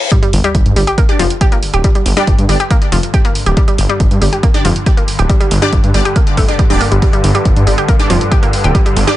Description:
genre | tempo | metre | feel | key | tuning
driving peak-time techno | 139 BPM | 4/4 | straight | unclear | A4 = 441 Hz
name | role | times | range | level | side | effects
reverse cymbal and sub drop | sound effects | 0.0-1.8 s | none | -20 LUFS | left 1 dB | none
analog pluck | riff | 0.1-9.1 s | F3 to G4 | -17 LUFS | equal | chorus, sidechain pumping, digital delay
swarming drone | drone | 0.9-9.2 s | G2 to D3 | -20 LUFS | equal | built-in reverb, sidechain pumping
electronic hi-hat | drums | 0.1-9.2 s | none | -23 LUFS | right 2 dB | sidechain pumping on hats
electronic kick drum | drums | 0.1-8.8 s | none | -12 LUFS | equal | none
detuned saw bass | bass | 0.3-9.0 s | D1 to G2 | -14 LUFS | equal | sidechain pumping
rave stab | stabs | 1.1-9.1 s | D4 to D5 | -20 LUFS | equal | chorus, built-in reverb, phaser, sidechain pumping, digital delay
room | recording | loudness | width
digital ambience | nothing above 10.3 kHz | -9 LUFS | side -14 dB against mid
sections
0.1-9.2 A section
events
drop 0.1-9.2; impact 0.1-1.8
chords
0.1 G5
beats
| 0.12 0.55 0.98 1.41 | 1.84 2.27 2.71 3.14 | 3.57 4.00 4.43 4.86 | 5.29 5.73 6.16 6.59 | 7.02 7.45 7.88 8.32 | 8.75

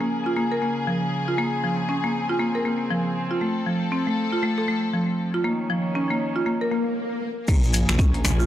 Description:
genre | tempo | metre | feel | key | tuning
afro house | 118 BPM | 4/4 | swing 59% on 16ths | Bb minor | A4 = 441 Hz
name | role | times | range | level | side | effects
warm studio string section | sustained chords | 0.0-8.5 s | Db3 to A4 | -29 LUFS | left 1 dB | vintage 12-bit sampler grit, sidechain pumping
buzzing marimba with hard mallets | arpeggios | 0.0-8.5 s | F3 to Bb4 | -24 LUFS | equal | sidechain pumping, analog delay
swell and sub drop | sound effects | 6.7-8.5 s | none | -30 LUFS | left 1 dB | none
dark detuned saw bass | bass | 7.5-8.5 s | Bb1 | -23 LUFS | equal | sidechain pumping
deep house drum kit | drums | 7.5-8.4 s | crash cymbal, finger snaps, hi-hat, toms | -27 LUFS | left 1 dB | overdrive
electronic kick drum | drums | 7.5-8.1 s | none | -19 LUFS | equal | none
egg shaker | percussion | 7.5-8.5 s | none | -34 LUFS | left 3 dB | none
congas | percussion | 8.2-8.4 s | none | -27 LUFS | right 2 dB | none
room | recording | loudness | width
light reverb, small room reverb | dry, gritty hardware recording | -21 LUFS | side -12 dB against mid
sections
0.0-7.5 A section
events
swell 6.7-7.5; stop 7.0-7.5; impact 7.5-8.5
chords
0.0 Bbm7; 3.4 F; 5.4 Eb5; 7.5 Bbm7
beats
0.36 0.87 | 1.38 1.89 2.40 2.91 | 3.42 3.92 4.43 4.94 | 5.45 5.96 6.47 6.97 | 7.48 7.99

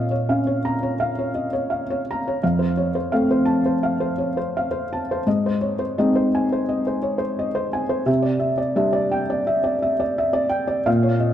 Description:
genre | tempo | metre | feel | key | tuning
neoclassical minimalist piano | 85 BPM | 4/4 | rubato | unclear | A4 = 440 Hz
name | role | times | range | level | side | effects
felt-muted upright piano | solo | 0.0-11.3 s | F2 to Bb5 | -19 LUFS | equal | none
room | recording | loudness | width
moderate concert hall reverb, RT60 1.9 s | dark, warm production | -19 LUFS | side -10 dB against mid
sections
0.0-11.3 A section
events
none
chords
0.0 Bbm; 2.4 F; 5.3 Ab; 8.1 Cadd9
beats
0.27 0.99 1.71 | 2.42 3.13 3.83 4.54 | 5.26 5.97 6.68 7.38 | 8.08 8.78 9.48 10.18 | 10.87

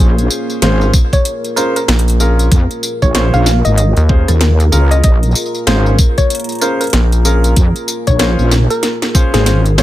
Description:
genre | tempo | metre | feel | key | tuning
glitch hop | 95 BPM | 4/4 | swing 61% on 16ths | Bb minor | A4 = 440 Hz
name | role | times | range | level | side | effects
woody wave-folded pluck | melody | 0.0-9.8 s | Ab4 to F5 | -20 LUFS | left 1 dB | chorus, digital delay
dark analog pad | sustained chords | 0.0-9.8 s | Bb3 to Bb4 | -23 LUFS | equal | chorus, phaser, vintage 12-bit sampler grit, sidechain pumping
warm grand piano | stabs | 0.0-9.8 s | Db4 to C5 | -20 LUFS | left 1 dB | sidechain pumping, digital delay
wobble bass | bass | 0.0-9.8 s | Ab1 to F2 | -11 LUFS | equal | chorus
drum and bass drum kit | drums | 0.2-9.8 s | hi-hat, rim click, snare drum, tambourine | -18 LUFS | equal | none
electronic kick drum | drums | 0.9-9.3 s | none | -11 LUFS | equal | none
rubbery square bass | bass | 1.9-7.5 s | Bb1 to Eb2 | -11 LUFS | equal | none
room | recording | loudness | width
little or no reverb | none | -10 LUFS | side -14 dB against mid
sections
0.0-9.8 A section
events
drum fill 8.8-9.8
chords
0.0 Bbm7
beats
0.62 1.25 1.88 | 2.52 3.15 3.78 4.41 | 5.04 5.67 6.30 6.94 | 7.57 8.20 8.83 9.46

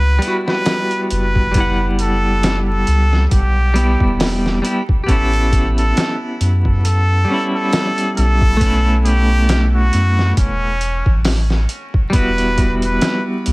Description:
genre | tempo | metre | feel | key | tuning
trip hop | 68 BPM | 4/4 | swing 56% on 16ths | E dorian | A4 = 438 Hz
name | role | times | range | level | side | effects
trumpet with straight mute | melody | 0.0-13.2 s | C#4 to B4 | -21 LUFS | equal | tape echo
clean electric guitar | accompaniment | 0.0-13.5 s | G3 to F#5 | -20 LUFS | equal | tremolo
soft dub sub bass | bass | 0.0-13.5 s | E1 to F#2 | -16 LUFS | equal | none
trip hop sampler-style drum kit | drums | 0.2-13.5 s | hi-hat, kick drum, snare drum | -18 LUFS | equal | small room ambience
room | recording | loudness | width
digital ambience | vinyl crackle | -13 LUFS | side -23 dB against mid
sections
0.0-13.5 A section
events
none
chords
0.0 Emadd9; 5.1 A7; 12.1 Emadd9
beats
0.67 | 1.55 2.43 3.32 4.20 | 5.08 5.96 6.84 7.73 | 8.61 9.49 10.38 11.26 | 12.14 13.02

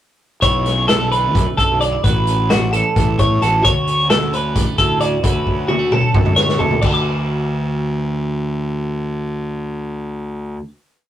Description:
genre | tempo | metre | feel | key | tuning
math rock and midwest emo | 263 BPM (eighths) | 7/8 | straight | D major | A4 = 440 Hz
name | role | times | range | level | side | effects
twelve-string electric guitar | accompaniment | 0.4-10.8 s | D2 to G4 | -25 LUFS | right 3 dB | none
twelve-string electric guitar | arpeggios | 0.4-10.7 s | F#4 to D6 | -17 LUFS | equal | none
fuzz fingered electric bass | bass | 0.4-10.6 s | A1 to D3 | -21 LUFS | left 1 dB | overdrive
loose indie drum kit | drums | 0.4-6.9 s | crash cymbal, hi-hat, kick drum, snare drum, toms | -18 LUFS | equal | none
room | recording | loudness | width
wet booth ambience, RT60 0.3 s | rough rehearsal-room recording | -15 LUFS | side -11 dB against mid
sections
0.4-6.8 A section; 6.8-10.0 final chord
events
drum fill 5.5-6.8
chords
0.4 Bm11; 2.0 A13; 3.6 Dmaj7; 6.8 D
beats
| 0.42 0.65 0.88 1.11 1.34 1.57 1.80 | 2.04 2.27 2.49 2.72 2.95 3.18 3.41 | 3.64 3.87 4.09 4.32 4.55 4.78 5.01 | 5.24 5.46 5.69 5.92 6.14 6.37 6.60 | 6.83 7.05 7.28 7.51 7.74 7.96 8.19 | 8.42 8.65 8.88 9.11 9.34 9.56 9.79

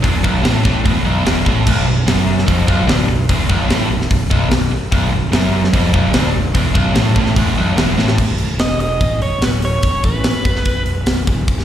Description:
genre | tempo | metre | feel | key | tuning
hard rock | 147 BPM | 4/4 | straight | unclear | A4 = 440 Hz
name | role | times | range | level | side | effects
biting overdriven guitar | riff | 0.0-8.2 s | B1 to A2 | -16 LUFS | equal | slapback echo
fuzz fingered electric bass | bass | 0.0-11.6 s | B0 to A1 | -19 LUFS | equal | overdrive
tight metal drum kit | drums | 0.0-11.6 s | crash cymbal, hi-hat, kick drum, snare drum | -17 LUFS | equal | none
biting lead guitar | melody | 8.6-10.8 s | B4 to D#5 | -21 LUFS | right 2 dB | overdrive, slapback echo, digital delay
room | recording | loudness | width
studio reverb | live gig heard through the venue's PA, recital hall reverb | -13 LUFS | side -10 dB against mid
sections
0.0-8.2 A section; 8.2-11.6 B section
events
drum fill 8.0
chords
0.0 B5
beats
| 0.04 0.45 0.85 1.26 | 1.67 2.07 2.48 2.89 | 3.29 3.70 4.11 4.51 | 4.92 5.33 5.74 6.14 | 6.55 6.96 7.37 7.78 | 8.19 8.60 9.01 9.42 | 9.83 10.24 10.65 11.06 | 11.47

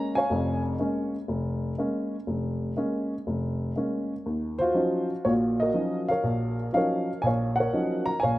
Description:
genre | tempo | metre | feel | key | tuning
solo jazz | 121 BPM | 4/4 | swing 69% on 8ths | unclear | A4 = 440 Hz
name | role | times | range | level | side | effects
dark upright piano | solo | 0.0-8.4 s | F1 to Bb5 | -25 LUFS | equal | none
room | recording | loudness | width
light reverb, small room reverb | rough home demo mix | -25 LUFS | side -16 dB against mid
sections
0.0-8.4 A section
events
none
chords
0.0 Bbm7; 4.3 Ebm9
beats
| 0.30 0.80 1.29 1.79 | 2.28 2.78 3.27 3.77 | 4.26 4.76 5.25 5.75 | 6.24 6.74 7.23 7.73 | 8.22

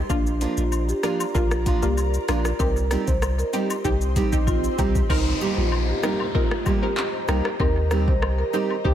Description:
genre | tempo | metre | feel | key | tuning
dancehall | 96 BPM | 4/4 | straight | C minor | A4 = 440 Hz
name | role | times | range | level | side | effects
punchy chord stab | accompaniment | 0.0-8.9 s | Bb3 to Bb4 | -30 LUFS | left 1 dB | chorus, phaser
ethereal airy pad | sustained chords | 0.0-8.9 s | F4 to C6 | -32 LUFS | left 2 dB | ensemble chorus, built-in reverb, sidechain pumping
punchy sub bass | bass | 0.0-8.9 s | Bb1 to Eb2 | -24 LUFS | equal | none
marimba with medium mallets | melody | 0.1-8.9 s | D4 to C5 | -28 LUFS | right 2 dB | dub echo
afro-pop drum kit | drums | 0.1-8.9 s | crash cymbal, handclaps, hi-hat, kick drum, rim click, shaker | -25 LUFS | equal | none
woodblock and cabasa | percussion | 0.1-8.8 s | none | -37 LUFS | left 8 dB | dub echo
swell and downlifter | sound effects | 3.8-8.9 s | none | -33 LUFS | right 1 dB | none
fingerpicked steel-string acoustic guitar | arpeggios | 0.4-8.7 s | F3 to G4 | -28 LUFS | right 5 dB | none
room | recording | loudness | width
light reverb | echo-heavy mix | -20 LUFS | side -10 dB against mid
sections
0.0-5.1 A section; 5.1-8.9 B section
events
swell 3.8-5.1; drum fill 3.8-5.1; hi-hats muted 5.1-8.9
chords
0.1 Bb; 2.6 Cm7; 7.6 Eb6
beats
| 0.10 0.72 1.35 1.97 | 2.60 3.22 3.85 4.47 | 5.10 5.72 6.35 6.97 | 7.60 8.22 8.85

